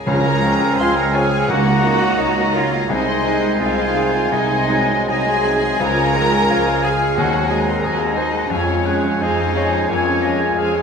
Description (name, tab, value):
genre	classical, romantic movement for piano and orchestra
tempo	75-92 BPM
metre	4/4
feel	rubato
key	Db major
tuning	A4 = 440 Hz
part	clear concert grand piano	melody	0.0-10.8 s	C2 to Db5	-22 LUFS	left 1 dB	none
part	warm studio violin section	melody	0.0-10.6 s	Db5 to C6	-28 LUFS	left 3 dB	none
part	silver concert flute	second line	0.0-10.6 s	Db5 to C6	-27 LUFS	left 3 dB	none
part	warm studio cello section	bass	0.0-10.6 s	Db4 to C5	-24 LUFS	right 3 dB	none
part	bright clarinet	second line	0.1-10.8 s	C5 to F5	-28 LUFS	left 3 dB	none
part	clear oboe	second line	0.1-10.8 s	F5 to Bb5	-28 LUFS	right 1 dB	none
part	warm studio violin section	second line	0.1-10.8 s	Ab4 to C6	-29 LUFS	left 4 dB	none
part	mellow bassoon	accompaniment	0.1-10.8 s	Eb3 to Db4	-27 LUFS	right 2 dB	none
part	warm studio viola section	accompaniment	0.1-10.8 s	F3 to Ab4	-27 LUFS	right 2 dB	none
part	clear trombone section	sustained chords	0.1-10.8 s	Db3 to Ab3	-30 LUFS	right 4 dB	none
part	mellow French horn section	sustained chords	0.1-10.8 s	Bb3 to Ab4	-28 LUFS	left 5 dB	none
part	mellow trumpet section	stabs	0.1-10.8 s	Ab5 to Bb5	-24 LUFS	left 3 dB	none
part	dark studio double bass section	bass	0.1-10.8 s	C2 to F2	-25 LUFS	right 4 dB	none
part	timpani	percussion	0.1-2.5 s	Db3	-27 LUFS	right 2 dB	none
room	wet recital hall reverb, RT60 1.9 s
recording	minimal, uncompressed stereo recording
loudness	-15 LUFS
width	side -6 dB against mid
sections	0.1-10.8 A section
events	none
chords	0.1 Db; 1.5 Ebm7/Db; 2.9 Ab/C; 5.8 Db; 7.2 Ab7/Eb; 8.5 Db/F